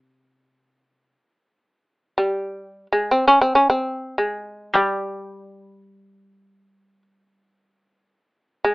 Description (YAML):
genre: japanese traditional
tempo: free time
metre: none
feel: none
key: unclear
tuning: A4 = 441 Hz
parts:
  - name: koto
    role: accompaniment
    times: 0.0-8.1 s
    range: C3 to G3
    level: -22 LUFS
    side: left 1 dB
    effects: none
  - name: shamisen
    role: melody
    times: 2.2-8.7 s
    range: G3 to Db4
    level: -18 LUFS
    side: equal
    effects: none
room: light reverb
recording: AM radio sound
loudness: -18 LUFS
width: side -24 dB against mid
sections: 0.0-8.7 A section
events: none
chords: none